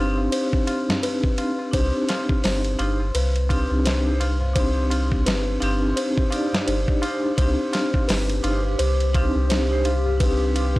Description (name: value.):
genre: trip hop.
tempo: 85 BPM.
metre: 4/4.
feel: swing 59% on 16ths.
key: C harmonic minor.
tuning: A4 = 443 Hz.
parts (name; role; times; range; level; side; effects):
vibraphone with hard mallets; accompaniment; 0.0-10.8 s; C4 to D5; -25 LUFS; equal; harmonic tremolo, vintage 12-bit sampler grit, low-pass filter, tape echo.
small celesta; arpeggios; 0.0-10.8 s; B4 to C5; -29 LUFS; left 2 dB; vintage 12-bit sampler grit, analog delay.
soft dub sub bass; bass; 0.0-10.8 s; G1 to C2; -23 LUFS; equal; tube saturation.
tabla; percussion; 0.2-10.8 s; none; -34 LUFS; left 1 dB; none.
dusty soul sampler-style drum kit; drums; 0.3-10.8 s; hi-hat, kick drum, ride cymbal, snare drum; -25 LUFS; equal; none.
warbly tape-like pad; sustained chords; 8.1-10.8 s; G4; -30 LUFS; equal; chorus, built-in reverb, phaser, vintage 12-bit sampler grit.
room: digital ambience.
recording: dry, gritty hardware recording, transformer saturation.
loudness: -19 LUFS.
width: side -19 dB against mid.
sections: 0.0-10.8 A section.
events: none.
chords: 0.0 Cmadd9.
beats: 0.32 1.03 | 1.73 2.44 3.15 3.85 | 4.56 5.26 5.97 6.67 | 7.38 8.09 8.79 9.50 | 10.21.